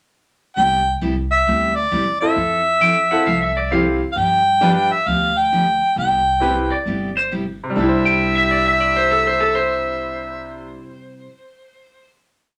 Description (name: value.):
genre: country, western swing.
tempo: 134 BPM.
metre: 4/4.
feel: swing 67% on 8ths.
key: C major.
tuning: A4 = 440 Hz.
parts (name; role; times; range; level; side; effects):
mellow harmonica; melody; 0.6-10.7 s; D5 to G5; -20 LUFS; equal; none.
picked steel-string acoustic guitar; accompaniment; 0.6-11.3 s; C3 to A4; -28 LUFS; equal; none.
upright bass; bass; 0.6-10.7 s; G1 to G2; -30 LUFS; equal; none.
bright upright piano; accompaniment; 2.2-10.9 s; C3 to C5; -24 LUFS; equal; none.
clean lap steel guitar; second line; 2.8-12.1 s; A4 to G5; -22 LUFS; equal; none.
room: wet small room reverb, RT60 0.6 s.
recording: none.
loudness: -18 LUFS.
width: mono.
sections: 0.6-7.8 A section; 7.8-11.3 final chord.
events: none.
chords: 0.6 Cmaj7; 2.4 Fmaj7; 4.2 G7; 6.0 Cmaj7; 7.8 C.